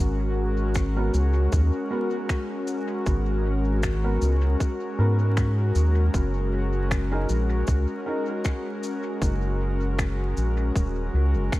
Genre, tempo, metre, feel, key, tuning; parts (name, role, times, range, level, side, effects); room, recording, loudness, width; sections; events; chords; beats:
ambient dub; 78 BPM; 4/4; swing 55% on 16ths; A4 = 439 Hz
airy breathy pad; sustained chords; 0.0-11.6 s; G#3 to A#4; -28 LUFS; left 1 dB; chorus
round analog bass; bass; 0.0-11.5 s; D#1 to G#2; -23 LUFS; equal
shaker and finger snaps; drums; 0.7-11.6 s; -36 LUFS; left 1 dB; dub echo
electronic kick drum; drums; 0.8-11.6 s; -25 LUFS; equal; overdrive
warm upright piano; stabs; 1.0-8.2 s; B3 to A#4; -34 LUFS; right 1 dB; dub echo
small room ambience; vinyl crackle; -22 LUFS; side -17 dB against mid
0.0-11.6 A section
0.0 G#7sus2; 6.1 F#add9
0.76 1.52 2.29 | 3.06 3.83 4.60 5.37 | 6.14 6.91 7.68 8.45 | 9.22 9.99 10.76 11.52